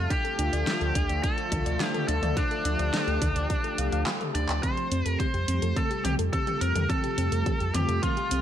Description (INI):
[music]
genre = synthwave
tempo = 106 BPM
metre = 4/4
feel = straight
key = unclear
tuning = A4 = 445 Hz
[part]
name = biting lead guitar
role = melody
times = 0.0-8.4 s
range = D4 to D5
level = -30 LUFS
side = equal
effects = overdrive, tape echo
[part]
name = warm analog pad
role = sustained chords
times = 0.0-8.4 s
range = C3 to A4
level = -33 LUFS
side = left 1 dB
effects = chorus, sidechain pumping
[part]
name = thumb-piano-like synth pluck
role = arpeggios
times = 0.0-8.4 s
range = C4 to F5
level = -35 LUFS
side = left 4 dB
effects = chorus, tape echo
[part]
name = round analog bass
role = bass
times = 0.0-8.4 s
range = C2 to F2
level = -28 LUFS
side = equal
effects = none
[part]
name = electronic kick drum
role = drums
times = 0.1-8.1 s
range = none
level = -30 LUFS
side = equal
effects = none
[part]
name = pop drum kit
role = drums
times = 0.1-8.4 s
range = handclaps, hi-hat, snare drum, toms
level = -33 LUFS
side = equal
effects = gated reverb
[part]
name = mellow synth brass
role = stabs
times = 4.6-8.4 s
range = F3 to A4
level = -35 LUFS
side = right 3 dB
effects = chorus
[sound]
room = light reverb, digital ambience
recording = none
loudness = -24 LUFS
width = side -10 dB against mid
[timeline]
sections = 0.0-4.6 A section; 4.6-8.4 B section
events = filter sweep on synth arpeggio sound 0.0-4.6, 4.6-8.4; drum fill 4.1-4.6, 4.6-8.4; filter sweep on analog polysynth 4.6-8.4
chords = 0.1 Dm; 4.6 Fadd9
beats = | 0.10 0.67 1.24 1.80 | 2.37 2.93 3.50 4.07 | 4.63 5.20 5.76 6.33 | 6.90 7.46 8.03